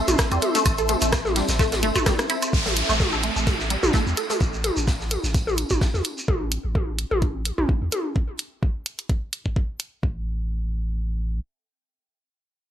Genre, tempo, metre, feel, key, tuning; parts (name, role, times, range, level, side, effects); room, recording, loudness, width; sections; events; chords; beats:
minimal techno; 128 BPM; 4/4; swing 54% on 16ths; A minor; A4 = 440 Hz
ethereal airy pad; texture; 0.0-4.4 s; C4 to C6; -31 LUFS; equal; ensemble chorus, built-in reverb, sidechain pumping
flickering grainy texture; texture; 0.0-2.5 s; E5; -35 LUFS; right 2 dB; built-in reverb, sidechain pumping
punchy sub bass; bass; 0.1-11.4 s; G1 to E2; -27 LUFS; equal; sidechain pumping
techno drum kit; drums; 0.1-9.9 s; hi-hat, rim click; -26 LUFS; right 1 dB; overdrive, small room ambience
electronic toms and woodblock; percussion; 0.1-8.0 s; -27 LUFS; equal; small room ambience, digital delay
shekere; percussion; 0.1-6.3 s; -32 LUFS; right 2 dB
electronic kick drum; drums; 0.2-10.1 s; -23 LUFS; equal; overdrive, small room ambience
vintage drum kit; drums; 0.2-6.2 s; hi-hat, snare drum, tambourine; -34 LUFS; equal; sidechain pumping on hats, high-pass filter on hats, small room ambience, high-pass filter on snare, sidechain pumping on perc, high-pass filter on perc, high-pass filter on room
resonant blip pluck; riff; 0.3-4.3 s; G3 to A4; -27 LUFS; equal; phaser, lush chorus, sidechain pumping, tape echo
downlifter; sound effects; 2.5-6.3 s; -28 LUFS; equal
light reverb, studio ambience; lossy compression artefacts; -21 LUFS; side -10 dB against mid
0.0-2.5 A section; 2.5-10.0 B section; 10.0-12.7 C section
drop 0.0-2.5; drum fill 2.1-2.5; fade-out on ambient pad 2.5-4.4
0.0 Am; 2.5 Am7; 10.0 N.C.
0.19 | 0.66 1.13 1.59 2.06 | 2.53 3.00 3.47 3.94 | 4.41 4.88 5.34 5.81 | 6.28 6.75 7.22 7.69 | 8.16 8.63 9.10 9.56 | 10.03 10.50 10.97